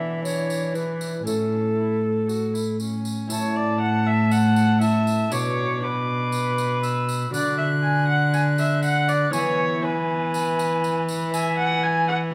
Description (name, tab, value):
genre	classical, renaissance-style consort dance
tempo	119 BPM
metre	4/4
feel	straight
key	A major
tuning	A4 = 439 Hz
part	alto recorder	melody	0.0-12.3 s	A4 to F#6	-30 LUFS	equal	none
part	warm viola	second line	0.0-12.2 s	C#4 to G#5	-29 LUFS	equal	none
part	concert harp	accompaniment	0.0-12.3 s	A2 to A4	-35 LUFS	equal	none
part	dark cello	bass	0.0-12.3 s	A2 to E3	-26 LUFS	equal	none
part	tambourine	percussion	0.3-11.6 s	none	-40 LUFS	equal	none
room	moderate stone room reverb, RT60 1.3 s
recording	none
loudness	-23 LUFS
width	mono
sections	0.0-3.3 A section; 3.3-12.3 B section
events	none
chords	0.2 E7; 1.3 A; 5.3 Bm; 7.3 D; 9.3 E